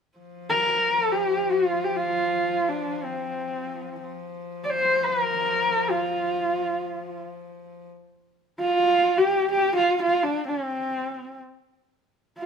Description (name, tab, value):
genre	mongolian traditional, Mongolian folk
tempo	free time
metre	none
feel	none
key	F zhi mode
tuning	A4 = 441 Hz
part	rich horsehead fiddle	drone	0.2-7.9 s	F3	-35 LUFS	left 4 dB	none
part	warm horsehead fiddle	melody	0.5-12.5 s	C4 to D5	-22 LUFS	equal	none
room	moderate stone room reverb, RT60 1.1 s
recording	band playing live in one room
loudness	-22 LUFS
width	side -6 dB against mid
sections	0.2-7.8 A section; 7.8-12.5 B section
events	none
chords	none